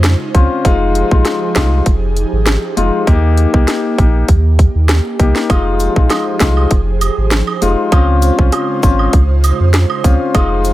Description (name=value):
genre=dancehall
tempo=99 BPM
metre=4/4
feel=straight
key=F minor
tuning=A4 = 444 Hz
part: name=airy breathy pad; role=sustained chords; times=0.0-10.7 s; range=Db3 to C5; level=-22 LUFS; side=right 3 dB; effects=chorus, sidechain pumping
part: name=warm sub bass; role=bass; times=0.0-10.7 s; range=F1 to F2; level=-13 LUFS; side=equal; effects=none
part: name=island pop drum kit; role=drums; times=0.0-10.7 s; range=hi-hat, kick drum, rim click, snare drum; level=-13 LUFS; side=equal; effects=none
part: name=downlifter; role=sound effects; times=0.0-0.6 s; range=none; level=barely audible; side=none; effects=none
part: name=warm concert grand piano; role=accompaniment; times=0.3-10.7 s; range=Ab3 to G4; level=-16 LUFS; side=left 4 dB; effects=none
part: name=woodblock and cabasa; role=percussion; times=5.5-10.7 s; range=none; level=-23 LUFS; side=right 8 dB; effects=none
room=little or no reverb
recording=none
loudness=-10 LUFS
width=side -15 dB against mid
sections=0.0-10.7 A section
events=none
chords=0.0 Dbmaj7; 0.6 Fm7; 3.1 Eb; 5.5 Fm7; 7.9 Dbmaj7